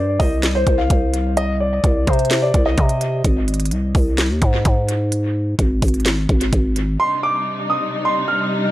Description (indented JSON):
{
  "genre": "hip hop, trap",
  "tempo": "128 BPM",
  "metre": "4/4",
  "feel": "half-time",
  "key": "C minor",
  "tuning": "A4 = 439 Hz",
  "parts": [
    { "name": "dark concert grand piano", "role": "melody", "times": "0.0-3.2, 7.0-8.7 s", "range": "C5 to F6", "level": "-21 LUFS", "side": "equal", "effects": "dub echo" },
    { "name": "growling 808-style bass", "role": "bass", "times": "0.0-7.0 s", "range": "Ab1 to C3", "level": "-18 LUFS", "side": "equal", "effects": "none" },
    { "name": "trap drum kit", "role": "drums", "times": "0.2-6.9 s", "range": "handclaps, hi-hat, kick drum, snare drum", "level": "-19 LUFS", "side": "equal", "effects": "dub echo" },
    { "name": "warm studio string section", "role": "sustained chords", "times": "7.0-8.7 s", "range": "C3 to Eb4", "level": "-22 LUFS", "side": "left 2 dB", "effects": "none" }
  ],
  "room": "small room ambience",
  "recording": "echo-heavy mix",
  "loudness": "-16 LUFS",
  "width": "side -15 dB against mid",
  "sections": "0.0-7.0 A section; 7.0-8.7 B section",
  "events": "none",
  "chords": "0.0 Cmadd9; 3.2 Ab; 7.0 Cmadd9",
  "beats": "0.43 0.90 | 1.37 1.84 2.31 2.78 | 3.25 3.71 4.18 4.65 | 5.12 5.59 6.06 6.53 | 7.00 7.46 7.93 8.40"
}